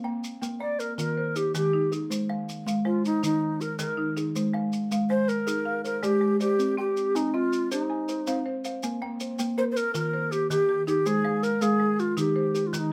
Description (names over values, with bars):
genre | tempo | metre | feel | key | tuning
southern african traditional, mbira-style interlocking cycle | 107 BPM (dotted quarters) | 12/8 | straight | unclear | A4 = 442 Hz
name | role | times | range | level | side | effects
buzzing marimba with hard mallets | arpeggios | 0.0-12.9 s | Eb3 to Ab5 | -35 LUFS | equal | none
kalimba | arpeggios | 0.0-12.9 s | Eb3 to G5 | -31 LUFS | equal | none
maracas | percussion | 0.2-12.9 s | none | -41 LUFS | equal | none
breathy low Native American-style wooden flute | melody | 0.6-12.9 s | Eb4 to D5 | -28 LUFS | equal | none
room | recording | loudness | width
moderate studio ambience, RT60 0.5 s | none | -27 LUFS | mono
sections
0.0-8.8 A section; 8.8-12.9 B section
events
none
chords
0.0 Bb; 1.0 Eb; 2.1 Ab; 3.2 Eb5; 4.4 Ab; 6.6 Cm; 8.8 Bb5; 9.9 Eb; 11.1 Ab; 12.2 Eb